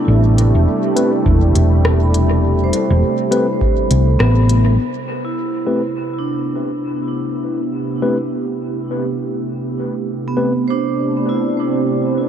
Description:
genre	ambient dub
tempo	102 BPM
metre	4/4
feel	swing 59% on 16ths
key	A minor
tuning	A4 = 441 Hz
part	warm analog pad	sustained chords	0.0-12.3 s	C3 to G4	-20 LUFS	right 1 dB	chorus
part	vibraphone with medium hard mallets	arpeggios	0.0-12.3 s	B3 to B5	-21 LUFS	moving between left 2 dB and right 7 dB	auto-pan, low-pass filter, dub echo
part	hollow-body short-scale fingered electric bass	bass	0.1-4.8 s	E1 to C2	-13 LUFS	equal	tube saturation
part	organic electronic drum kit	drums	0.4-4.6 s	hi-hat, rim click	-26 LUFS	left 1 dB	low-pass filter on hats, studio reverb, low-pass filter on snare, dub echo
part	mellow tine electric piano	stabs	1.0-10.5 s	A3 to B4	-25 LUFS	left 3 dB	low-pass filter, dub echo
part	electronic kick drum	drums	1.3-3.8 s	none	-19 LUFS	equal	studio reverb
room	light reverb, digital ambience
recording	none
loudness	-14 LUFS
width	side -9 dB against mid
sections	0.0-4.8 A section; 4.8-12.3 B section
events	band accent 4.2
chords	0.0 Am9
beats	| 0.08 0.67 1.26 1.85 | 2.44 3.02 3.61 4.20 | 4.79 5.38 5.97 6.55 | 7.14 7.73 8.32 8.91 | 9.50 10.08 10.67 11.26 | 11.85

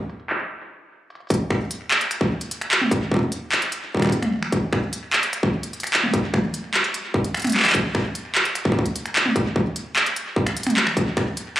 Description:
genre	IDM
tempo	149 BPM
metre	4/4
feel	straight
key	none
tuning	none
part	industrial drum kit	drums	0.1-11.6 s	finger snaps, handclaps, hi-hat, toms	-21 LUFS	equal	overdrive, low-pass filter on hats, studio reverb, low-pass filter on snare, low-pass filter on toms, digital delay
part	electronic kick drum	drums	1.3-11.2 s	none	-21 LUFS	equal	distortion, overdrive, studio reverb
room	light reverb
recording	recorded on a phone in the room, club reverb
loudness	-19 LUFS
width	side -13 dB against mid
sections	0.0-1.3 A section; 1.3-11.6 B section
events	stop 0.5-1.3; drum fill 1.1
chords	none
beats	0.10 0.50 0.90 | 1.30 1.71 2.11 2.51 | 2.91 3.32 3.72 4.12 | 4.53 4.93 5.33 5.73 | 6.13 6.54 6.94 7.34 | 7.75 8.15 8.55 8.95 | 9.36 9.76 10.16 10.56 | 10.97 11.37

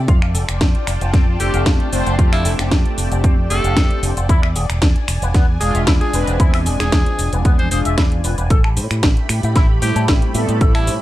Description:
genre	nu-disco, nu disco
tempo	114 BPM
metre	4/4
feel	straight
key	unclear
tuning	A4 = 440 Hz
part	lush unison pad	sustained chords	0.0-11.0 s	A3 to B5	-29 LUFS	left 2 dB	chorus, phaser, sidechain pumping
part	fingered electric bass with an envelope filter	bass	0.0-11.0 s	E1 to A2	-19 LUFS	equal	none
part	electric guitar with an envelope filter	riff	0.1-10.9 s	B3 to A5	-27 LUFS	left 2 dB	analog chorus, slapback echo
part	electronic kick drum	drums	0.1-10.7 s	none	-15 LUFS	equal	small room ambience
part	house drum kit	drums	0.1-11.0 s	finger snaps, hi-hat, shaker, snare drum	-23 LUFS	equal	small room ambience
part	raspy tenor saxophone	melody	1.4-10.9 s	E4 to C5	-26 LUFS	equal	analog delay
part	mellow synth brass	accompaniment	1.4-11.0 s	F3 to C5	-24 LUFS	equal	chorus, sidechain pumping, slapback echo
room	little or no reverb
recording	none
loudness	-14 LUFS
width	side -15 dB against mid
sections	0.0-11.0 A section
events	none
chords	0.1 F69; 4.3 E7b9b13; 8.5 Am9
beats	| 0.08 0.61 1.14 1.66 | 2.19 2.71 3.24 3.77 | 4.29 4.82 5.35 5.87 | 6.40 6.92 7.45 7.98 | 8.50 9.03 9.56 10.08 | 10.61

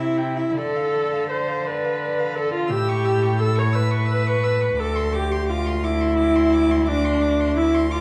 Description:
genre	classical, slow romantic movement for string quartet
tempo	57 BPM (dotted quarters)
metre	12/8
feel	rubato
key	unclear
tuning	A4 = 440 Hz
part	rich violin	melody	0.0-8.0 s	D5 to E6	-34 LUFS	equal	none
part	dark violin	second line	0.0-8.0 s	D4 to C#5	-28 LUFS	equal	none
part	dark viola	accompaniment	0.0-8.0 s	D4 to C#5	-25 LUFS	equal	none
part	rich cello	bass	0.0-8.0 s	D2 to D3	-26 LUFS	equal	none
room	wet recital hall reverb, RT60 1.4 s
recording	vinyl crackle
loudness	-21 LUFS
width	mono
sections	0.0-8.0 A section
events	none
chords	0.0 C; 0.6 Dm; 2.7 A7; 4.8 Dm7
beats	| 0.57 1.65 2.71 3.74 | 4.79 5.84 6.88 7.92

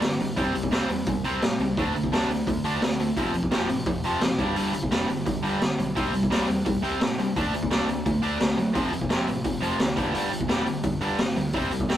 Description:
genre	punk rock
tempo	172 BPM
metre	4/4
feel	straight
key	unclear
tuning	A4 = 440 Hz
part	cranked stack guitar	riff	0.0-12.0 s	F2 to D4	-26 LUFS	equal	overdrive
part	fuzz picked electric bass	bass	0.0-12.0 s	E1 to A2	-33 LUFS	equal	overdrive
part	raw garage drum kit	drums	0.0-12.0 s	hi-hat, kick drum, snare drum	-26 LUFS	equal	none
room	moderate small room reverb, RT60 0.5 s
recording	rough rehearsal-room recording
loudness	-23 LUFS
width	side -11 dB against mid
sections	0.0-12.0 A section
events	none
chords	0.4 C5; 1.8 D5; 3.2 F5; 4.4 G5; 6.0 C5; 7.4 D; 8.8 F5; 10.0 G5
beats	0.02 | 0.37 0.72 1.07 1.42 | 1.77 2.12 2.47 2.82 | 3.17 3.52 3.87 4.22 | 4.57 4.92 5.27 5.62 | 5.96 6.31 6.66 7.01 | 7.36 7.71 8.06 8.41 | 8.76 9.10 9.45 9.80 | 10.15 10.50 10.85 11.19 | 11.54 11.89

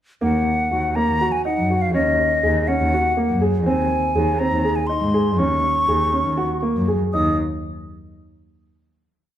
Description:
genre	contemporary instrumental, chamber music in an uneven meter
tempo	244 BPM (eighths)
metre	7/8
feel	straight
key	Eb dorian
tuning	A4 = 440 Hz
part	hollow concert flute	melody	0.2-7.4 s	Eb5 to Eb6	-21 LUFS	left 1 dB	none
part	warm baby grand piano	arpeggios	0.2-7.4 s	Bb3 to Ab4	-22 LUFS	right 1 dB	none
part	dark cello	bass	0.2-7.4 s	Eb2 to Ab2	-22 LUFS	equal	none
room	moderate recital hall reverb, RT60 1.5 s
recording	none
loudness	-17 LUFS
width	side -11 dB against mid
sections	0.2-7.1 A section; 7.1-8.9 final note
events	none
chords	0.2 Ebm7; 3.7 Abadd9/Eb; 5.4 Ebm7; 7.1 N.C.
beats	| 0.22 0.47 0.71 0.96 1.21 1.46 1.70 | 1.95 2.19 2.44 2.68 2.93 3.17 3.42 | 3.66 3.91 4.15 4.40 4.64 4.89 5.14 | 5.38 5.63 5.88 6.12 6.37 6.63 6.88 | 7.14

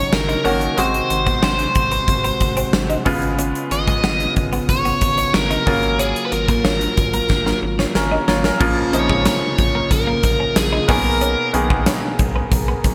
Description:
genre	1980s-style pop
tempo	92 BPM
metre	4/4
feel	straight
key	G# dorian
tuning	A4 = 441 Hz
part	biting lead guitar	melody	0.0-11.5 s	G#4 to D#5	-23 LUFS	equal	overdrive, delay
part	bright grand piano	accompaniment	0.0-12.9 s	B#2 to C#5	-26 LUFS	equal	none
part	chamber organ, flutes	sustained chords	0.0-12.9 s	B2 to A#4	-29 LUFS	equal	none
part	twelve-string electric guitar	riff	0.0-12.9 s	G#3 to D#4	-30 LUFS	equal	analog chorus, delay
part	rubbery square bass	bass	0.0-12.9 s	G#1 to B1	-27 LUFS	equal	none
part	gated 80s drum kit	drums	0.1-12.9 s	crash cymbal, hi-hat, kick drum, snare drum, tambourine	-23 LUFS	equal	gated reverb
room	moderate lush hall reverb, RT60 1.8 s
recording	bright 1980s-style digital production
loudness	-18 LUFS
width	mono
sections	0.0-8.6 A section; 8.6-12.9 B section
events	drum fill 7.3-8.6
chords	0.0 D#m7/G#; 0.8 G#7; 3.1 C#7/G#; 5.7 F#maj7/G#; 8.6 A#m; 10.9 G#madd9/B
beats	0.13 | 0.78 1.43 2.08 2.73 | 3.39 4.04 4.69 5.34 | 6.00 6.65 7.30 7.95 | 8.60 9.26 9.91 10.56 | 11.21 11.87 12.52

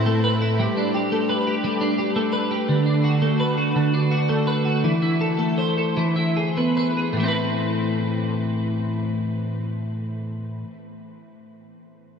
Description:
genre	pop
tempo	48-57 BPM (dotted quarters)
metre	6/8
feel	straight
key	A minor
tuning	A4 = 441 Hz
part	twelve-string electric guitar	accompaniment	0.0-10.8 s	A2 to C5	-20 LUFS	equal	ensemble chorus
room	wet huge ambient reverb, RT60 8.6 s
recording	dreamy mix soaked in reverb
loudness	-20 LUFS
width	side -6 dB against mid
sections	0.0-7.2 A section; 7.2-12.1 B section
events	slowing down 2.7-7.2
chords	0.0 Amadd9; 0.6 Gadd9; 2.7 D6; 4.8 Am/E; 6.0 E; 7.2 Amadd9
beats	| 0.59 1.64 | 2.69 3.75 | 4.84 5.97 | 7.17 8.41 | 9.65

